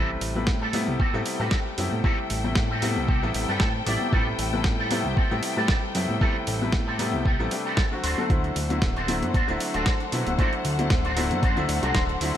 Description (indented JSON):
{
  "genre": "nu-disco, nu disco",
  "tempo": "115 BPM",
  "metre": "4/4",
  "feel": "swing 54% on 16ths",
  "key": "A dorian",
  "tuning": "A4 = 440 Hz",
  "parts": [
    { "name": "bright grand piano", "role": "accompaniment", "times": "0.0-12.4 s", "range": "C3 to B4", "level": "-29 LUFS", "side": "left 1 dB", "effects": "vintage 12-bit sampler grit, sidechain pumping, ping-pong delay" },
    { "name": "muted studio string section", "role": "sustained chords", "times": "0.0-12.4 s", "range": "D4 to G5", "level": "-33 LUFS", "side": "left 4 dB", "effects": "sidechain pumping" },
    { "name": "electric guitar with an envelope filter", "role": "riff", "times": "0.0-12.4 s", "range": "C4 to C6", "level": "-31 LUFS", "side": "right 2 dB", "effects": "ensemble chorus, ping-pong delay" },
    { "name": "fat analog bass", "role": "bass", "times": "0.0-12.3 s", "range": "D1 to B2", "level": "-29 LUFS", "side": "equal", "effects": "none" },
    { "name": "dusty soul sampler-style drum kit", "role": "drums", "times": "0.2-12.4 s", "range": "hi-hat, snare drum", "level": "-31 LUFS", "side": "right 1 dB", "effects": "none" },
    { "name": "congas", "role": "percussion", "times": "0.4-11.4 s", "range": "none", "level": "-34 LUFS", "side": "left 5 dB", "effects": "none" },
    { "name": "electronic kick drum", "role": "drums", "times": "0.5-12.1 s", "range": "none", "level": "-24 LUFS", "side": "equal", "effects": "none" }
  ],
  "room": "light reverb, small room ambience",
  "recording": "bright 1980s-style digital production",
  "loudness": "-22 LUFS",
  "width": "side -10 dB against mid",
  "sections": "0.0-12.4 A section",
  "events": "clean electric guitar fill 3.3-4.1, 11.7-12.4",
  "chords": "0.0 Am7; 8.0 D7",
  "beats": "0.48 1.00 1.52 | 2.04 2.56 3.08 3.61 | 4.13 4.65 5.17 5.69 | 6.21 6.74 7.26 7.78 | 8.30 8.82 9.35 9.87 | 10.39 10.91 11.43 11.95"
}